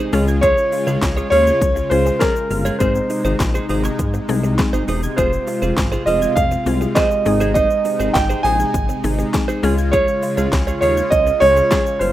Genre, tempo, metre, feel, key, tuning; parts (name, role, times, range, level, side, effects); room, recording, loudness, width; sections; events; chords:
dance-pop; 101 BPM; 4/4; straight; A4 = 435 Hz
warm concert grand piano; melody; 0.0-12.1 s; Bb4 to Ab5; -17 LUFS; right 1 dB
mallet-like synth pluck; accompaniment; 0.0-12.1 s; Ab3 to Ab4; -24 LUFS; left 4 dB; chorus, sidechain pumping
soft supersaw; sustained chords; 0.0-12.1 s; C3 to F4; -24 LUFS; left 1 dB; sidechain pumping
direct-recorded clean electric guitar; riff; 0.0-12.1 s; Eb4 to Db5; -26 LUFS; right 4 dB; wide subtle chorus
soft round pluck; arpeggios; 0.1-12.1 s; Ab3 to Ab6; -32 LUFS; right 2 dB; chorus, sidechain pumping, tape echo
chorused synth bass; bass; 0.1-12.1 s; E1 to Ab2; -21 LUFS; left 1 dB; sidechain pumping
pop drum kit; drums; 0.1-12.1 s; handclaps, hi-hat, kick drum, shaker, snare drum; -22 LUFS; left 1 dB; overdrive
light reverb; rough home demo mix; -15 LUFS; side -13 dB against mid
0.0-12.1 A section
0.1 Db; 2.8 Ab; 5.2 Fm; 7.3 Ab; 9.6 Db